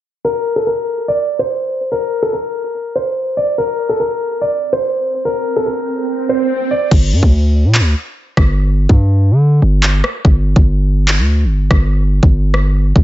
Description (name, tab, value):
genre	hip hop, drill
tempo	144 BPM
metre	4/4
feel	half-time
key	G minor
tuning	A4 = 439 Hz
part	dark grand piano	melody	0.2-6.9 s	A4 to D5	-16 LUFS	equal	tape echo
part	swell	sound effects	5.1-6.9 s	none	-21 LUFS	right 8 dB	none
part	distorted 808-style bass	bass	6.9-13.0 s	G1 to D3	-12 LUFS	equal	distortion
part	drill drum kit	drums	6.9-13.0 s	crash cymbal, handclaps, kick drum, rim click	-12 LUFS	equal	none
room	moderate plate reverb, RT60 1.1 s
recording	dreamy mix soaked in reverb, low-pass filter, nothing above 7.8 kHz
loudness	-12 LUFS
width	side -14 dB against mid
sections	0.2-6.9 A section; 6.9-13.0 B section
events	filter sweep 0.2-6.9; swell 5.1-6.9; hi-hats muted 6.9-13.0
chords	0.2 N.C.; 6.9 G5